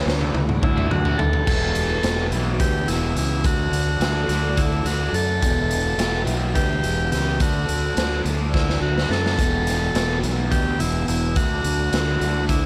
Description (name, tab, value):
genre	psychedelic rock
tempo	212 BPM (eighths)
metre	7/8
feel	straight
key	E minor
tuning	A4 = 436 Hz
part	string machine, cellos	sustained chords	0.0-12.7 s	G4 to E6	-38 LUFS	equal	none
part	fuzz guitar	riff	0.0-12.7 s	E2 to D4	-30 LUFS	equal	distortion, phaser
part	fuzz fingered electric bass	bass	0.0-12.7 s	E1 to F#2	-26 LUFS	equal	overdrive
part	tanpura	drone	0.0-8.2 s	E2 to E3	-43 LUFS	equal	none
part	raw garage drum kit	drums	0.1-12.6 s	crash cymbal, hi-hat, kick drum, snare drum, toms	-26 LUFS	equal	none
part	combo organ	melody	0.6-12.7 s	E4 to A4	-28 LUFS	equal	none
room	small room ambience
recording	none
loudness	-21 LUFS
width	mono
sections	0.0-1.5 A section; 1.5-12.7 B section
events	drum fill 0.0-1.5, 8.5-9.4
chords	0.0 D5; 1.5 Em; 3.4 D; 5.4 Em; 7.4 D; 9.4 Em; 11.4 D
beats	0.06 0.34 0.62 0.91 1.19 | 1.47 1.75 2.03 2.31 2.60 2.88 3.16 | 3.44 3.72 4.01 4.29 4.57 4.85 5.14 | 5.42 5.70 5.99 6.27 6.55 6.83 7.12 | 7.40 7.68 7.97 8.25 8.53 8.81 9.10 | 9.38 9.66 9.95 10.23 10.51 10.79 11.08 | 11.36 11.64 11.93 12.21 12.49